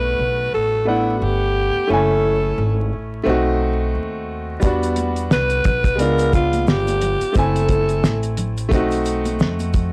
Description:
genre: hip hop, jazz-hop.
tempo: 88 BPM.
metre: 4/4.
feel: swing 57% on 16ths.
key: unclear.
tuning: A4 = 440 Hz.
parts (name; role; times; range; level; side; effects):
growling alto saxophone; melody; 0.0-8.4 s; E4 to B4; -22 LUFS; equal; none.
bright upright piano; accompaniment; 0.0-9.9 s; G3 to G#5; -24 LUFS; equal; none.
upright bass; bass; 0.0-9.9 s; F#1 to F2; -25 LUFS; equal; none.
cloth-damped thuddy drum kit; drums; 4.6-9.9 s; hi-hat, kick drum, snare drum; -22 LUFS; equal; none.
tube shaker and congas; percussion; 4.6-9.9 s; none; -35 LUFS; equal; none.
room: light reverb.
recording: dry, gritty hardware recording, vinyl crackle.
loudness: -19 LUFS.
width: mono.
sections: 0.0-9.9 A section.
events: none.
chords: 0.0 Gmaj9; 1.9 F#m7; 3.3 B7b9; 4.6 Em9; 6.0 C#7b9; 7.4 F#m7b5; 8.7 B7b9.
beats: 0.54 1.22 | 1.90 2.58 3.27 3.95 | 4.63 5.31 5.99 6.67 | 7.36 8.04 8.72 9.40.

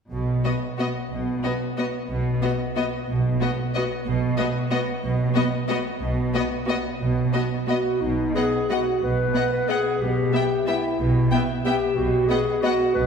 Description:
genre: classical, orchestral ballroom waltz.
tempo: 182 BPM.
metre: 3/4.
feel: uneven beats, rubato.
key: B major.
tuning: A4 = 442 Hz.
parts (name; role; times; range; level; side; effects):
rich studio cello section; bass; 0.1-13.1 s; B2; -28 LUFS; right 2 dB; none.
warm studio double bass section; bass; 0.1-13.1 s; B1; -27 LUFS; right 1 dB; none.
dark studio violin section; second line; 0.4-12.7 s; F#4 to E5; -32 LUFS; left 2 dB; none.
rich studio viola section; accompaniment; 0.4-12.7 s; B3; -29 LUFS; left 1 dB; none.
warm studio violin section; melody; 0.5-12.7 s; D#5 to G5; -31 LUFS; left 4 dB; none.
warm clarinet; second line; 7.7-13.1 s; D#4 to B4; -23 LUFS; equal; none.
room: wet concert hall reverb, RT60 2.2 s.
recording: heard from further back in the room.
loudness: -21 LUFS.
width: side -6 dB against mid.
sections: 0.1-8.0 A section; 8.0-13.1 B section.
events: none.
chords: 0.1 B5; 8.0 B.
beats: | 0.12 0.45 0.79 | 1.12 1.44 1.78 | 2.11 2.43 2.77 | 3.09 3.41 3.75 | 4.06 4.38 4.71 | 5.03 5.35 5.68 | 6.00 6.33 6.68 | 7.00 7.33 7.68 | 8.02 8.35 8.70 | 9.02 9.35 9.69 | 10.01 10.33 10.67 | 10.99 11.32 11.66 | 11.97 12.29 12.63 | 12.96.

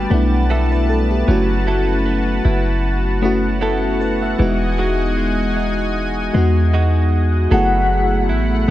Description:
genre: contemporary R&B.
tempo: 77 BPM.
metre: 4/4.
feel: swing 54% on 16ths.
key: unclear.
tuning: A4 = 441 Hz.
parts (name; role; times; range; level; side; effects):
mellow FM electric piano; accompaniment; 0.0-8.7 s; G#3 to A5; -20 LUFS; left 3 dB; chorus.
lush unison pad; sustained chords; 0.0-8.7 s; G3 to B5; -25 LUFS; equal; chorus.
direct-recorded clean electric guitar; arpeggios; 0.0-8.7 s; E3 to A4; -25 LUFS; right 5 dB; digital delay.
warm 808-style bass; bass; 0.0-8.7 s; E1 to E2; -18 LUFS; equal; none.
soft octave-layered synth lead; melody; 7.5-8.3 s; F#5; -19 LUFS; left 2 dB; chorus, tremolo, digital delay.
room: digital ambience.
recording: none.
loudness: -15 LUFS.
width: side -14 dB against mid.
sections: 0.0-7.5 A section; 7.5-8.7 B section.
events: FM electric piano fill 0.0-1.3.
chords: 0.0 Gmaj9; 1.3 B7sus4/F#; 4.4 Emaj9; 7.5 F#m11.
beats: 0.50 | 1.28 2.06 2.84 3.62 | 4.39 5.17 5.95 6.73 | 7.51 8.29.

